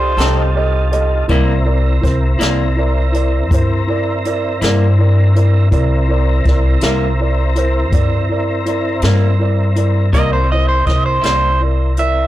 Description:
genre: slow blues.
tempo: 54 BPM (dotted quarters).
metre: 12/8.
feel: straight.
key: C mixolydian.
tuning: A4 = 440 Hz.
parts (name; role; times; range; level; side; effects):
electric guitar at the edge of break-up; second line; 0.0-1.3, 10.1-12.3 s; C5 to E5; -18 LUFS; right 2 dB; analog delay.
dark upright piano; accompaniment; 0.0-12.3 s; E4 to E5; -20 LUFS; right 2 dB; none.
tonewheel organ; sustained chords; 0.0-12.3 s; C4 to Bb4; -24 LUFS; left 1 dB; slow rotary speaker, chorus vibrato.
upright bass; bass; 0.0-12.3 s; C2 to G2; -14 LUFS; equal; none.
clean electric guitar; accompaniment; 0.2-11.5 s; C3 to A4; -20 LUFS; left 2 dB; tremolo.
jazz brush drum kit; drums; 0.2-12.1 s; hi-hat, kick drum, snare drum; -18 LUFS; equal; none.
room: light reverb.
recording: blown-out, overdriven recording, overdrive.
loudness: -12 LUFS.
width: side -14 dB against mid.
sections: 0.0-10.1 A section; 10.1-12.3 B section.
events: clean electric guitar solo 10.1-12.3.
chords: 0.0 F7; 1.3 C7.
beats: 0.18 | 1.29 2.40 3.50 4.61 | 5.72 6.82 7.93 9.03 | 10.14 11.24.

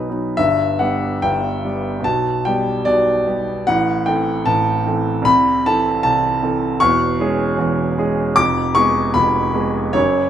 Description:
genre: classical, romantic character piece for solo piano.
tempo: 70-79 BPM.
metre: 2/4.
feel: rubato.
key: G major.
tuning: A4 = 441 Hz.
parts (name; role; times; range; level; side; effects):
warm grand piano; solo; 0.0-10.3 s; E1 to D6; -15 LUFS; equal; none.
room: light reverb.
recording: minimal, uncompressed stereo recording.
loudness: -15 LUFS.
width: side -10 dB against mid.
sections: 0.4-10.3 A section.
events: none.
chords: 0.4 G; 2.0 G/B; 3.7 Am; 5.3 Am/C; 6.8 C#m/E; 8.4 Fdim.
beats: | 0.36 1.21 | 2.05 2.85 | 3.67 4.46 | 5.26 6.03 | 6.79 7.57 | 8.36 9.14 | 9.94.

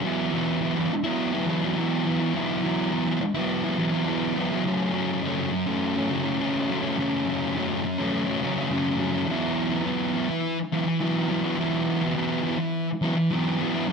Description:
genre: rock.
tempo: 104 BPM.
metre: 4/4.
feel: straight.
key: unclear.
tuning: A4 = 440 Hz.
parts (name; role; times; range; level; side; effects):
thick fuzz guitar; solo; 0.0-13.9 s; F#2 to E4; -23 LUFS; equal; distortion.
room: wet echo chamber reverb, RT60 1.4 s.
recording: none.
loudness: -23 LUFS.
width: side -5 dB against mid.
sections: 0.0-9.3 A section; 9.3-13.9 B section.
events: none.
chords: 0.0 Esus2; 4.7 F#m; 9.3 Esus2.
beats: | 0.04 0.61 1.19 1.77 | 2.35 2.93 3.50 4.08 | 4.66 5.24 5.82 6.39 | 6.97 7.55 8.13 8.71 | 9.28 9.86 10.43 11.01 | 11.58 12.16 12.73 13.31 | 13.88.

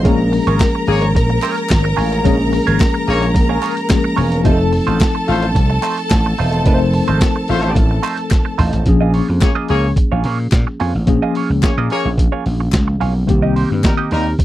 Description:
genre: disco.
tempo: 109 BPM.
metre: 4/4.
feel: straight.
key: Bb dorian.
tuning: A4 = 440 Hz.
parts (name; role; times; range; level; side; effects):
warm studio violin section; second line; 0.0-8.8 s; A4 to Bb5; -22 LUFS; equal; none.
mellow tine electric piano; accompaniment; 0.0-14.4 s; Eb3 to C5; -20 LUFS; left 3 dB; medium stereo tremolo.
semi-hollow electric guitar; accompaniment; 0.0-14.4 s; A3 to Eb5; -22 LUFS; right 9 dB; wah.
vintage slap bass; bass; 0.1-14.3 s; E1 to Bb2; -17 LUFS; equal; none.
boom bap sampler-style drum kit; drums; 0.1-14.4 s; hi-hat, kick drum, snare drum, toms; -15 LUFS; equal; none.
group handclap; percussion; 0.6-14.0 s; none; -30 LUFS; left 11 dB; none.
warm horn section; stabs; 0.9-14.3 s; G3 to Db5; -18 LUFS; left 4 dB; none.
room: little or no reverb.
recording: dry, close 1970s-style studio recording.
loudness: -13 LUFS.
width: side -14 dB against mid.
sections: 0.0-8.9 A section; 8.9-14.4 B section.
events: drum fill 8.3-8.9.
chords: 0.1 Bbm7; 4.4 F7; 8.9 Bbm7; 13.3 Cm7.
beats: | 0.05 0.60 1.15 1.70 | 2.25 2.80 3.35 3.90 | 4.45 5.00 5.55 6.10 | 6.65 7.21 7.76 8.31 | 8.86 9.41 9.97 10.52 | 11.07 11.62 12.18 12.73 | 13.28 13.84 14.39.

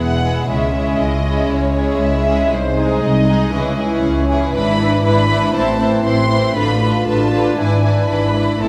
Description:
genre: quick classical-period movement for symphony orchestra.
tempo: 118 BPM.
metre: 4/4.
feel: straight.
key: unclear.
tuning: A4 = 442 Hz.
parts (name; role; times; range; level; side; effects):
rich studio violin section; melody; 0.0-8.7 s; B#4 to C6; -25 LUFS; equal; none.
clear studio violin section; second line; 0.0-8.7 s; D#4 to C5; -25 LUFS; equal; none.
rich studio viola section; accompaniment; 0.0-8.7 s; D3 to D#4; -24 LUFS; equal; none.
warm French horn section; sustained chords; 0.0-8.7 s; G#3 to F4; -24 LUFS; equal; none.
dark studio double bass section; bass; 0.0-8.7 s; E1 to C#2; -23 LUFS; equal; none.
warm studio cello section; bass; 0.0-8.7 s; B#1 to A2; -23 LUFS; equal; none.
room: moderate scoring stage reverb, RT60 1.7 s.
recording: none.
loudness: -16 LUFS.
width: mono.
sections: 0.0-8.7 A section.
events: none.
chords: 0.5 C#m; 2.5 G#/B#; 3.5 C#m; 4.6 E7/G#; 5.6 Am; 6.6 Bm7b5/A; 7.6 E7/G#.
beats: | 0.49 1.00 1.51 2.02 | 2.52 3.03 3.54 4.05 | 4.55 5.05 5.56 6.06 | 6.57 7.07 7.58 8.09 | 8.60.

